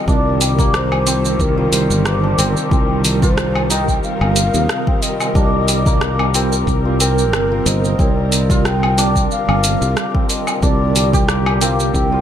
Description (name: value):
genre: organic downtempo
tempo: 91 BPM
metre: 4/4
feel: swing 55% on 16ths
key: C minor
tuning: A4 = 439 Hz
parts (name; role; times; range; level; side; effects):
- breathy mellow low ney; melody; 0.0-12.2 s; Bb4 to G5; -23 LUFS; equal; ping-pong delay
- mellow tine electric piano; accompaniment; 0.0-12.2 s; G3 to Bb4; -24 LUFS; right 3 dB; medium stereo tremolo, sidechain pumping, ping-pong delay
- dark studio string section; sustained chords; 0.0-12.2 s; C3 to Bb4; -24 LUFS; left 2 dB; sidechain pumping
- santur; arpeggios; 0.0-12.2 s; G3 to C5; -22 LUFS; left 3 dB; ping-pong delay
- sustaining fretless electric bass; bass; 0.1-12.2 s; G1 to Eb2; -18 LUFS; equal; tube saturation
- deep house drum kit; drums; 0.1-12.1 s; hi-hat, rim click, shaker, woodblock; -21 LUFS; right 1 dB; none
- electronic kick drum; drums; 0.1-12.1 s; none; -17 LUFS; equal; none
room: light reverb, digital ambience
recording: none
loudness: -13 LUFS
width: side -10 dB against mid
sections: 0.0-12.2 A section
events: none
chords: 0.0 Cm7